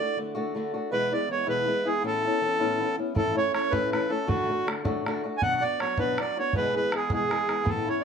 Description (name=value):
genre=celtic folk, Celtic jig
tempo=107 BPM (dotted quarters)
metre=6/8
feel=straight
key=A major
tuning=A4 = 441 Hz
part: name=accordion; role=melody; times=0.0-8.0 s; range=F#4 to G#5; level=-26 LUFS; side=right 2 dB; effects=none
part: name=fingerpicked old ladder-braced acoustic guitar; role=accompaniment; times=0.0-8.0 s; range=E2 to G#4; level=-29 LUFS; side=left 3 dB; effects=none
part: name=bodhran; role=percussion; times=3.2-7.8 s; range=none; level=-31 LUFS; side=right 1 dB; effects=none
room=moderate studio reverb, RT60 0.6 s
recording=close, detailed microphones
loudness=-24 LUFS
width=side -6 dB against mid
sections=0.0-3.2 A section; 3.2-8.0 A section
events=none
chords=0.0 D; 0.9 E; 2.0 Aadd9; 3.2 A; 4.3 D/A; 5.4 Bm; 6.5 E